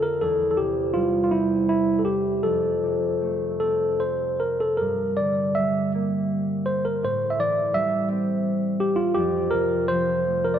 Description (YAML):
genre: celtic folk, Celtic slow air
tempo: 74-85 BPM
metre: 3/4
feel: rubato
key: unclear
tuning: A4 = 439 Hz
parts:
  - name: tine electric piano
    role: melody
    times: 0.0-10.6 s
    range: E4 to E5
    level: -22 LUFS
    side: equal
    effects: none
  - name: concert harp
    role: accompaniment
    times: 0.0-10.6 s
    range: E2 to C4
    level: -26 LUFS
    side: equal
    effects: none
room: wet concert hall reverb, RT60 2.6 s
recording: dark, warm production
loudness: -21 LUFS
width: side -9 dB against mid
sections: 0.0-10.6 A section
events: none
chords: 0.2 Fmaj9/E (rootless); 2.5 F; 4.8 Gm; 7.0 Am7; 9.2 F